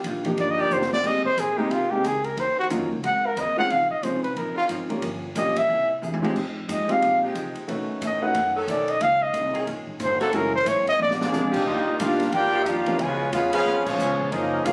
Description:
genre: jazz, big band swing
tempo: 181 BPM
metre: 4/4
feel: swing 61% on 8ths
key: Ab major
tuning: A4 = 440 Hz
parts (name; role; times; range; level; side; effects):
- hollow-body jazz guitar; accompaniment; 0.0-14.7 s; G2 to Bb4; -36 LUFS; equal; none
- mellow saxophone section; sustained chords; 0.0-14.0 s; C3 to A4; -33 LUFS; equal; none
- upright bass; bass; 0.0-14.7 s; F1 to C3; -37 LUFS; equal; none
- open jazz drum kit; drums; 0.0-14.7 s; crash cymbal, hi-hat, kick drum, ride cymbal, snare drum, toms; -37 LUFS; equal; none
- warm baby grand piano; accompaniment; 0.2-14.7 s; F3 to B4; -30 LUFS; equal; none
- breathy trumpet; melody; 0.4-11.1 s; Eb4 to F#5; -25 LUFS; equal; none
- warm trumpet section; melody; 11.2-14.7 s; Bb3 to Ab5; -28 LUFS; equal; none
- bright trombone section; second line; 11.2-14.7 s; Cb3 to G4; -29 LUFS; equal; none
room: light reverb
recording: recorded on a phone in the room, studio ambience, compression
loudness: -24 LUFS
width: mono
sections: 0.0-1.0 A section; 1.0-11.7 A section; 11.7-14.7 B section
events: trumpet solo 0.0-11.7; drum fill 0.7-1.0, 6.0-6.4, 11.0-11.3; band accent 13.8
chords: 0.0 Ebmaj9; 1.0 Abmaj9; 2.4 Ebm7; 3.0 Ab9; 3.7 Dbmaj9; 5.0 Gm7b5; 5.7 C7b13; 6.4 Fm9; 7.7 B9; 9.0 Bbm11; 10.3 Gb9; 11.0 Bb7; 11.7 Ebmaj9; 13.0 Db7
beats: 0.05 0.38 0.71 | 1.04 1.38 1.71 2.04 | 2.37 2.70 3.04 3.37 | 3.70 4.03 4.36 4.69 | 5.03 5.36 5.69 6.02 | 6.35 6.68 7.02 7.35 | 7.68 8.01 8.34 8.68 | 9.01 9.34 9.67 10.01 | 10.34 10.67 11.00 11.33 | 11.67 12.00 12.33 12.66 | 12.99 13.33 13.66 13.99 | 14.33 14.66

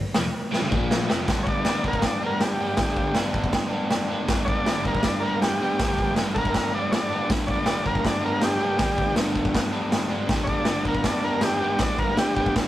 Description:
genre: garage rock duo or trio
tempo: 160 BPM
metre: 4/4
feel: straight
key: G mixolydian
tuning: A4 = 445 Hz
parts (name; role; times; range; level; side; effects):
- crunchy overdriven guitar; riff; 0.0-12.7 s; F2 to D4; -26 LUFS; equal; none
- raw garage drum kit; drums; 0.1-12.6 s; hi-hat, kick drum, snare drum; -24 LUFS; equal; none
- overdriven combo organ; melody; 1.4-12.5 s; G4 to D5; -26 LUFS; equal; none
room: light reverb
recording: rough rehearsal-room recording, tube saturation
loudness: -21 LUFS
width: side -14 dB against mid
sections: 0.0-1.3 A section; 1.3-12.7 B section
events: drum fill 0.5-1.3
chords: 0.0 G5; 0.7 Bb5; 1.1 F5; 1.3 G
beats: 0.16 0.54 0.91 | 1.29 1.66 2.04 2.42 | 2.79 3.17 3.54 3.92 | 4.30 4.67 5.05 5.42 | 5.80 6.17 6.55 6.92 | 7.30 7.67 8.05 8.42 | 8.80 9.17 9.55 9.92 | 10.30 10.68 11.05 11.43 | 11.80 12.18 12.56

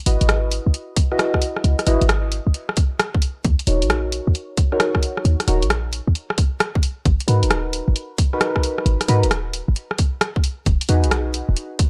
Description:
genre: UK garage, two-step garage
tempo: 133 BPM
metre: 4/4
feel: swing 66% on 16ths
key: G# minor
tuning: A4 = 440 Hz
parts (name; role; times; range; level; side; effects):
- deep mellow chord stab; stabs; 0.1-11.9 s; D#4 to D#5; -26 LUFS; equal; chorus, phaser, tape echo
- short 808-style bass; bass; 0.1-11.5 s; D#1 to G#2; -21 LUFS; equal; none
- garage drum kit; drums; 0.1-11.9 s; hi-hat, rim click; -24 LUFS; equal; none
- electronic kick drum; drums; 1.0-11.9 s; none; -21 LUFS; equal; none
room: little or no reverb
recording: dry, gritty hardware recording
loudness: -20 LUFS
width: mono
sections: 0.0-11.9 A section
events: none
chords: 0.0 C#m11 (rootless); 3.4 D#m7; 7.1 G#m9; 10.7 Emaj9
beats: 0.29 0.74 1.19 | 1.64 2.09 2.54 3.00 | 3.45 3.90 4.35 4.80 | 5.25 5.70 6.15 6.60 | 7.05 7.51 7.96 8.41 | 8.86 9.31 9.76 10.21 | 10.66 11.12 11.57

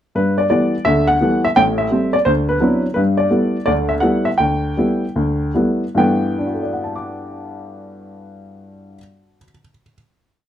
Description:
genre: jazz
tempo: 145-171 BPM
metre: 4/4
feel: swing 65% on 8ths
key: G major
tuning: A4 = 439 Hz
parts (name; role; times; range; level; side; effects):
- dark baby grand piano; solo; 0.2-9.9 s; A1 to D6; -15 LUFS; equal; none
room: moderate studio reverb, RT60 0.6 s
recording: none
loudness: -15 LUFS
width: side -10 dB against mid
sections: 0.1-6.0 A section; 6.0-9.3 final chord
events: slowing down 3.0-6.0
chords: 0.1 G69; 1.6 Am7; 2.3 D13; 3.0 G69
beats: | 0.14 0.49 0.85 1.20 | 1.55 1.90 2.26 2.61 | 2.96 3.31 3.67 4.03 | 4.40 4.77 5.16 5.55 | 5.96 6.38 6.79 7.20 | 7.62 8.03 8.45 8.86

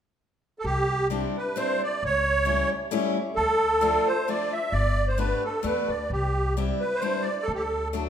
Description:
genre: musette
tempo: 132 BPM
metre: 3/4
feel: swing 54% on 8ths, rubato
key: C major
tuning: A4 = 441 Hz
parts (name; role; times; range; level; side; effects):
- musette accordion; melody; 0.6-7.9 s; G4 to E5; -25 LUFS; right 1 dB; none
- upright bass; bass; 0.6-8.1 s; G1 to E2; -29 LUFS; equal; none
- picked steel-string acoustic guitar; accompaniment; 1.1-8.1 s; F3 to G4; -30 LUFS; left 2 dB; none
room: wet recital hall reverb, RT60 1.4 s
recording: minimal, uncompressed stereo recording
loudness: -23 LUFS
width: side -8 dB against mid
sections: 0.7-8.1 A section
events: none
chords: 0.0 N.C.; 0.7 Cadd9; 2.0 A7/C#; 3.4 Dm; 4.7 Gadd9; 6.1 Cadd9; 7.5 D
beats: 0.20 | 0.65 1.11 1.56 | 2.02 2.47 2.93 | 3.38 3.83 4.28 | 4.73 5.18 5.64 | 6.10 6.57 7.02 | 7.48 7.93

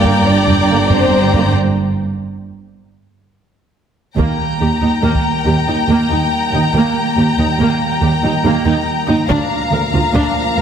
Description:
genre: cinematic, epic orchestral film score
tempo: 93 BPM (dotted quarters)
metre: 12/8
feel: straight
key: unclear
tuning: A4 = 438 Hz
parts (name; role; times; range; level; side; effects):
- warm symphonic violin section; melody; 0.0-10.6 s; Bb5; -21 LUFS; left 5 dB; none
- rich symphonic violin section; second line; 0.0-10.6 s; Bb4 to G5; -22 LUFS; left 3 dB; none
- rich symphonic viola section; accompaniment; 0.0-10.6 s; Bb3 to G5; -20 LUFS; right 2 dB; none
- bright trombone section; sustained chords; 0.0-1.4 s; D3 to Bb3; -24 LUFS; right 4 dB; none
- mellow French horn section; sustained chords; 0.0-10.6 s; F3 to D4; -24 LUFS; left 1 dB; none
- warm symphonic cello section; bass; 0.0-10.6 s; D2 to G2; -18 LUFS; right 3 dB; none
- warm symphonic double bass section; bass; 0.0-10.6 s; G1 to Eb2; -19 LUFS; right 3 dB; none
- taiko ensemble; drums; 0.0-5.3, 9.3-10.5 s; none; -22 LUFS; equal; none
room: wet scoring stage reverb, RT60 1.6 s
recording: heavily compressed radio sound, multiband compression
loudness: -12 LUFS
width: side -8 dB against mid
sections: 0.0-4.2 A section; 4.2-10.6 B section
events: break 1.5-4.2; drum fill 3.5-4.2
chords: 0.0 Gm; 4.2 Eb; 9.3 Bb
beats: 0.24 0.89 | 1.55 2.21 2.86 3.52 | 4.17 4.82 5.46 6.11 | 6.75 7.39 8.03 8.66 | 9.30 9.94 10.58

